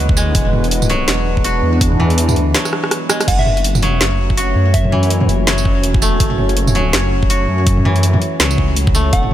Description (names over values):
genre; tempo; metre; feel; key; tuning
half-time drum and bass; 164 BPM; 4/4; swing 59% on 16ths, half-time; F# minor; A4 = 440 Hz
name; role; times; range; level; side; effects
dark analog pad; sustained chords; 0.0-9.3 s; G#3 to C#5; -22 LUFS; right 1 dB; chorus, phaser, sidechain pumping
koto; arpeggios; 0.0-9.3 s; E3 to F#4; -21 LUFS; left 2 dB; ping-pong delay
dark detuned saw bass; bass; 0.0-9.3 s; E1 to F#2; -16 LUFS; equal; none
electronic kick drum; drums; 0.1-9.2 s; none; -16 LUFS; equal; overdrive
drum and bass drum kit; drums; 0.2-9.3 s; crash cymbal, hi-hat, rim click, snare drum, tambourine, toms; -19 LUFS; right 1 dB; overdrive
soft synth bell; melody; 3.3-5.3, 9.1-9.2 s; E5 to F#5; -24 LUFS; equal; chorus, tape echo
room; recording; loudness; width
light reverb; none; -12 LUFS; side -12 dB against mid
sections
0.0-9.3 A section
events
break 2.5-3.3; drum fill 2.5-3.3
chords
0.0 E; 3.3 F#m